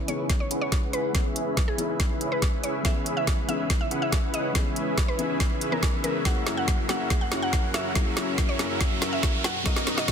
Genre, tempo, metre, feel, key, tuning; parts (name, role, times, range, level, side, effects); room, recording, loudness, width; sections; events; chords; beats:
future bass; 141 BPM; 4/4; half-time; C# dorian; A4 = 440 Hz
felt-muted upright piano; accompaniment; 0.0-10.1 s; E3 to A#4; -34 LUFS; left 6 dB; sidechain pumping, tape echo
airy breathy pad; sustained chords; 0.0-10.1 s; F#2 to B4; -38 LUFS; right 2 dB; chorus, phaser, sidechain pumping
dense compressed supersaw; riff; 0.0-10.1 s; B3 to F#5; -30 LUFS; equal; sidechain pumping, low-pass filter
riser; sound effects; 3.3-10.1 s; -37 LUFS; right 2 dB
mallet-like synth pluck; melody; 0.1-10.1 s; G#4 to F#5; -32 LUFS; equal; chorus, sidechain pumping, tape echo
trap drum kit; drums; 0.1-10.1 s; hi-hat, snare drum; -29 LUFS; equal; soft clipping on snare
electronic kick drum; drums; 0.3-10.1 s; -26 LUFS; equal
light reverb; dense, heavily limited modern master; -23 LUFS; side -7 dB against mid
0.0-10.1 A section
build-up 0.0-10.1; drum fill 0.0-10.1; filter sweep on supersaw synth 0.0-10.1; riser 3.3-10.1
0.0 C#m7; 6.3 F#7; 9.4 Bmaj7
0.29 0.72 | 1.15 1.57 2.00 2.42 | 2.85 3.27 3.70 4.12 | 4.55 4.98 5.40 5.83 | 6.25 6.68 7.10 7.53 | 7.96 8.38 8.81 9.23 | 9.66 10.08